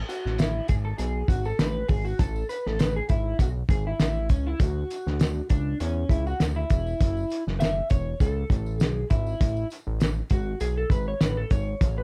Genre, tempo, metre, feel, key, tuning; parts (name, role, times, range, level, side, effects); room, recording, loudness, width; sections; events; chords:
indie pop, bedroom pop; 100 BPM; 4/4; swing 55% on 16ths; A major; A4 = 440 Hz
fat analog bass; bass; 0.0-12.0 s; E1 to E2; -31 LUFS; equal
electric guitar through a small old amp; accompaniment; 0.1-12.0 s; C#4 to E5; -34 LUFS; equal; analog chorus, warbly pitch drift
cloth-damped thuddy drum kit; drums; 0.1-12.0 s; hi-hat, kick drum, snare drum; -26 LUFS; equal
tambourine; percussion; 0.1-12.0 s; -54 LUFS; equal
light reverb; dark, warm production; -26 LUFS; mono
0.0-12.0 A section
clean electric guitar solo 0.0-12.0
0.0 Amaj9; 4.6 Dmaj9; 7.0 F#m7; 9.4 Amaj9